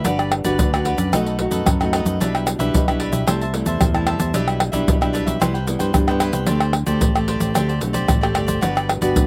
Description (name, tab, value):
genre	samba and choro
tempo	112 BPM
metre	4/4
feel	straight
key	G major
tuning	A4 = 440 Hz
part	cavaquinho	accompaniment	0.0-9.3 s	D4 to A5	-30 LUFS	equal	slapback echo
part	nylon-string guitar	accompaniment	0.0-9.3 s	G2 to B4	-26 LUFS	equal	none
part	modern bright fingered electric bass	bass	0.0-9.3 s	G1 to G2	-25 LUFS	equal	none
part	tube shaker, surdo, pandeiro and tamborim	percussion	0.0-9.3 s	none	-22 LUFS	equal	none
room	light reverb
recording	recorded outdoors, with no room sound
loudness	-19 LUFS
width	mono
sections	0.1-9.3 A section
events	none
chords	0.1 Gmaj7; 1.1 B7; 2.2 Em7/B; 3.3 Am7/C; 4.3 Em7/B; 5.4 Cmaj7; 6.5 D7sus4; 8.6 Gmaj7